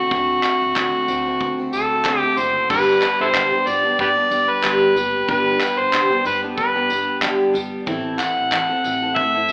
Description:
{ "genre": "acoustic pop", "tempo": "93 BPM", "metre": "4/4", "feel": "swing 55% on 16ths", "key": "unclear", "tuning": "A4 = 439 Hz", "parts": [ { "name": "overdriven harmonica", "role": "melody", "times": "0.0-9.5 s", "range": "E4 to F#5", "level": "-20 LUFS", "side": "equal", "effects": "none" }, { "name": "picked steel-string acoustic guitar", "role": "accompaniment", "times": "0.0-9.5 s", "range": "G2 to A4", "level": "-25 LUFS", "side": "equal", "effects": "none" }, { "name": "upright bass", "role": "bass", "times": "0.0-9.5 s", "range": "F#1 to D3", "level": "-38 LUFS", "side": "equal", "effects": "none" }, { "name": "modern studio drum kit", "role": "drums", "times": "0.1-9.5 s", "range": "crash cymbal, handclaps, kick drum, tambourine", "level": "-28 LUFS", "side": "equal", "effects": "none" } ], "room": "wet large studio reverb, RT60 1.4 s", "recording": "band playing live in one room, AM radio sound", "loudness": "-19 LUFS", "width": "mono", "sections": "0.0-2.7 A section; 2.7-9.5 B section", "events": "none", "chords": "0.0 D7; 2.7 G; 7.9 Am" }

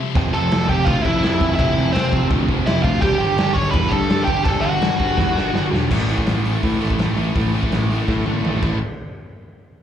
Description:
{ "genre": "punk rock", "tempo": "166 BPM", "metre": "4/4", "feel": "straight", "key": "unclear", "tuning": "A4 = 440 Hz", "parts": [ { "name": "sludgy distorted guitar", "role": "riff", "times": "0.0-8.8 s", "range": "F2 to C4", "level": "-25 LUFS", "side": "left 10 dB", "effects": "overdrive" }, { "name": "distorted electric guitar", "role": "riff", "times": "0.1-8.8 s", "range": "F2 to A3", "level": "-25 LUFS", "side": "right 11 dB", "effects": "distortion, slapback echo" }, { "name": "growling picked electric bass", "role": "bass", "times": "0.2-8.8 s", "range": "E1 to A2", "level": "-22 LUFS", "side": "equal", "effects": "overdrive" }, { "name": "raw garage drum kit", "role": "drums", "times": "0.2-8.7 s", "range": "crash cymbal, hi-hat, kick drum, snare drum, toms", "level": "-22 LUFS", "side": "equal", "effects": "none" }, { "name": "biting lead guitar", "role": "melody", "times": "0.3-5.7 s", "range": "C4 to C#6", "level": "-21 LUFS", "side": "right 1 dB", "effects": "overdrive, slapback echo, tape echo" } ], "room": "little or no reverb", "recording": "live gig heard through the venue's PA, club reverb", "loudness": "-16 LUFS", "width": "side -9 dB against mid", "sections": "0.0-5.9 A section; 5.9-8.8 B section; 8.8-9.8 C section", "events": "drum fill 5.2-5.9, 8.1-8.8", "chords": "0.0 F; 3.0 G5; 5.9 A5; 8.8 N.C." }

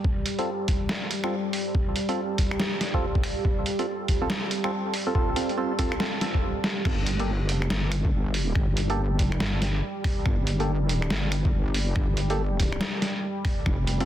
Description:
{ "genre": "deep dubstep", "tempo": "141 BPM", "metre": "4/4", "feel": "swing 61% on 16ths, half-time", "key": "unclear", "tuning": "A4 = 442 Hz", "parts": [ { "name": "deep dark ambient pad", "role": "sustained chords", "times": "0.0-14.1 s", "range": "G3", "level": "-32 LUFS", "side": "equal", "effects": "chorus, built-in reverb" }, { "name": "electronic kick drum", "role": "drums", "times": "0.0-13.8 s", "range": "none", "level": "-25 LUFS", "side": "equal", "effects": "none" }, { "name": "trip hop sampler-style drum kit", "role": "drums", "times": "0.3-14.1 s", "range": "crash cymbal, finger snaps, hi-hat, snare drum", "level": "-30 LUFS", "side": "equal", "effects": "none" }, { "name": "percussive organ stab", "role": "stabs", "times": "0.4-14.1 s", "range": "Bb3 to A4", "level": "-31 LUFS", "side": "right 1 dB", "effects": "chorus, phaser, dub echo" }, { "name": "wobble bass", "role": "bass", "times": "6.9-14.1 s", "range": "F1 to G1", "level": "-26 LUFS", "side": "equal", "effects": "chorus" } ], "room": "light reverb", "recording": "dense, heavily limited modern master", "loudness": "-24 LUFS", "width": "side -12 dB against mid", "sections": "0.0-6.9 A section; 6.9-14.1 B section", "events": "build-up 0.0-6.9; filter sweep on synth stab 0.0-6.9; drum fill 6.6; drop 6.9-14.1", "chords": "0.0 F; 6.9 Gmadd9" }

